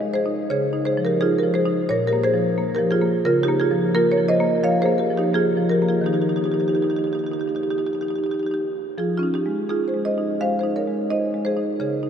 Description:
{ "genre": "classical, contemporary piece for solo marimba", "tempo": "85 BPM", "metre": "4/4", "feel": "uneven beats, rubato", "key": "F minor", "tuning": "A4 = 442 Hz", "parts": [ { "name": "marimba with medium mallets", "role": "solo", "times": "0.0-12.1 s", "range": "Bb2 to F5", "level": "-19 LUFS", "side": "equal", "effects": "none" } ], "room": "wet huge ambient reverb, RT60 8.4 s", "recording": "in a vast, echoing space", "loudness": "-19 LUFS", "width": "side -8 dB against mid", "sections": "0.0-12.1 A section", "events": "none", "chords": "0.5 Dbadd9; 1.9 Bb5; 3.3 Db69; 6.1 Ebadd9; 9.0 Fm7", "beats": "| 0.49 1.20 1.88 2.57 | 3.26 3.95 4.64 5.34 | 6.06 6.79 7.53 8.26 | 8.99 9.70 10.40 11.10 | 11.80" }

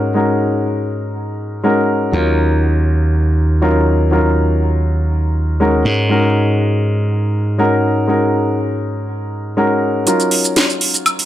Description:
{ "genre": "nu-disco, nu disco", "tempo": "121 BPM", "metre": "4/4", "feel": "straight", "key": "Eb minor", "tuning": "A4 = 440 Hz", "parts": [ { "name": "warm baby grand piano", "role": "accompaniment", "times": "0.0-11.3 s", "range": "Gb3 to Bb4", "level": "-16 LUFS", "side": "left 1 dB", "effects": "ping-pong delay" }, { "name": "glassy slap bass", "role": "bass", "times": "0.0-10.0 s", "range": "Eb2 to Ab2", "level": "-16 LUFS", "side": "equal", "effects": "none" }, { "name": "house drum kit", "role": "drums", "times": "10.1-11.3 s", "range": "hi-hat, shaker, snare drum, woodblock", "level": "-14 LUFS", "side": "right 1 dB", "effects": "none" } ], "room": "light reverb", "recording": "none", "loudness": "-13 LUFS", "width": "side -12 dB against mid", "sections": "0.0-10.1 A section; 10.1-11.3 B section", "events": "build-up 10.1-11.3", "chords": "0.0 Ab7sus4; 2.1 Ebm7; 5.9 Ab7sus4; 10.1 Ebm7", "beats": "| 0.15 0.65 1.14 1.64 | 2.13 2.63 3.13 3.62 | 4.12 4.61 5.11 5.61 | 6.10 6.60 7.09 7.59 | 8.09 8.58 9.08 9.57 | 10.07 10.56 11.06" }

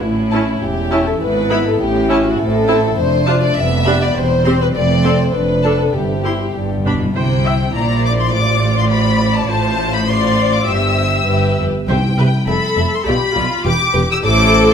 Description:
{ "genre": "quick classical-period movement for symphony orchestra", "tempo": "102 BPM", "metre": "2/4", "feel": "straight", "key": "C major", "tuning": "A4 = 440 Hz", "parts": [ { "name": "warm chamber violin section", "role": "second line", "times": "0.0-14.7 s", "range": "E4 to E5", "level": "-20 LUFS", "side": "left 3 dB", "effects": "none" }, { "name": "mellow French horn section", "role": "sustained chords", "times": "0.0-6.9 s", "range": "G3 to E4", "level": "-22 LUFS", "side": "left 3 dB", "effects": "none" }, { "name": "rich chamber double bass section", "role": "bass", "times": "0.0-14.7 s", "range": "E1 to C2", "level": "-20 LUFS", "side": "right 3 dB", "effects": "none" }, { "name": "rich studio cello section", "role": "bass", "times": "0.0-14.7 s", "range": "E2 to C3", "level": "-20 LUFS", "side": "right 1 dB", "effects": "none" }, { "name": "rich studio violin section", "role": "melody", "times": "0.3-14.7 s", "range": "G5 to E6", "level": "-20 LUFS", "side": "left 3 dB", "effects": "none" }, { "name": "rich chamber viola section", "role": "accompaniment", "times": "0.3-14.7 s", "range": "B3 to E5", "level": "-20 LUFS", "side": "equal", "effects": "none" }, { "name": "timpani", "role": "percussion", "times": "5.9-7.1, 11.9-12.4 s", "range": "G2 to C3", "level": "-21 LUFS", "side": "left 1 dB", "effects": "none" } ], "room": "wet recital hall reverb, RT60 1.5 s", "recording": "none", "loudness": "-13 LUFS", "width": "side -7 dB against mid", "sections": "0.0-7.2 A section; 7.2-14.7 B section", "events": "timpani fill 6.6-7.2", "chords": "0.0 A; 1.2 E/G#; 1.8 A; 2.4 Am; 3.0 Dm7/F; 3.6 G7/F; 4.2 C/E; 4.7 F; 5.3 Dm/F; 5.9 C/G; 6.6 G; 7.2 C; 7.8 C7/Bb; 8.3 F/A; 10.7 C/G; 11.3 G; 11.9 C5; 12.5 F; 13.1 B(b5, no3); 13.7 Em7", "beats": "| 0.03 0.62 | 1.22 1.81 | 2.40 2.98 | 3.57 4.16 | 4.75 5.34 | 5.95 6.55 | 7.16 7.75 | 8.34 8.92 | 9.51 10.09 | 10.69 11.29 | 11.89 12.48 | 13.07 13.66 | 14.25" }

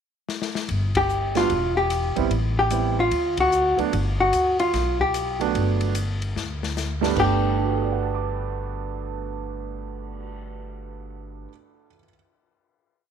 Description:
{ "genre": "jazz, small-group swing and bop", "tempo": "148 BPM", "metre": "4/4", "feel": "swing 65% on 8ths", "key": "G major", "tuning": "A4 = 440 Hz", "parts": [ { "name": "open jazz drum kit", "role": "drums", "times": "0.3-10.3 s", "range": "crash cymbal, cymbal swell, hi-hat, kick drum, ride cymbal, rim click, snare drum", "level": "-32 LUFS", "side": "left 5 dB", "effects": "none" }, { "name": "upright bass", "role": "bass", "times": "0.7-11.4 s", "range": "E1 to D2", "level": "-27 LUFS", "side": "left 1 dB", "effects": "none" }, { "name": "hollow-body jazz guitar", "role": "melody", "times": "1.0-11.5 s", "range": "F4 to G4", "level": "-22 LUFS", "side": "left 2 dB", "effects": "none" }, { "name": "warm concert grand piano", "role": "accompaniment", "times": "1.4-12.1 s", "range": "G2 to D6", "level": "-27 LUFS", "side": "right 12 dB", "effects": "none" } ], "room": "light reverb, small room ambience", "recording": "1960s-style stereo", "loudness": "-21 LUFS", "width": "side -8 dB against mid", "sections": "0.0-0.7 pickup bar; 0.7-7.2 A section; 7.2-10.4 final chord", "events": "drum fill 0.3-0.7, 6.4-7.2; band accent 0.9, 3.3", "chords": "0.0 N.C.; 0.7 Gmaj7; 1.5 Em; 2.3 Am7; 3.1 D6; 3.9 Gmaj7", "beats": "0.29 | 0.70 1.10 1.50 1.91 | 2.31 2.72 3.12 3.53 | 3.93 4.34 4.74 5.14 | 5.55 5.95 6.36 6.76 | 7.17 7.57 7.97 8.38 | 8.78 9.18 9.59 9.99" }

